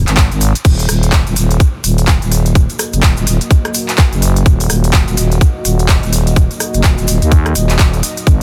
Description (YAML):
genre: bass house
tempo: 126 BPM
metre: 4/4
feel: swing 60% on 16ths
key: Eb minor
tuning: A4 = 438 Hz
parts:
  - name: growling FM bass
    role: bass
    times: 0.0-8.4 s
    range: Eb1 to Eb2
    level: -15 LUFS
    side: equal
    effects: tube saturation, sidechain pumping
  - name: big-room dance drum kit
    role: drums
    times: 0.1-8.4 s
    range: crash cymbal, handclaps, hi-hat, rim click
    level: -20 LUFS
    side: equal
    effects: none
  - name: tube shaker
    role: percussion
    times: 0.1-8.4 s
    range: none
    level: -29 LUFS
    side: equal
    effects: none
  - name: electronic kick drum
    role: drums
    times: 0.2-8.4 s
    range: none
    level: -13 LUFS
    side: equal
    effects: none
  - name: deep dark ambient pad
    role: sustained chords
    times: 1.9-8.4 s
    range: Bb3 to Eb5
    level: -27 LUFS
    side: equal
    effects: chorus, built-in reverb, sidechain pumping
room: little or no reverb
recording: dense, heavily limited modern master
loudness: -12 LUFS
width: mono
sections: 0.0-8.4 A section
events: none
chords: 0.0 N.C.; 0.7 Ebm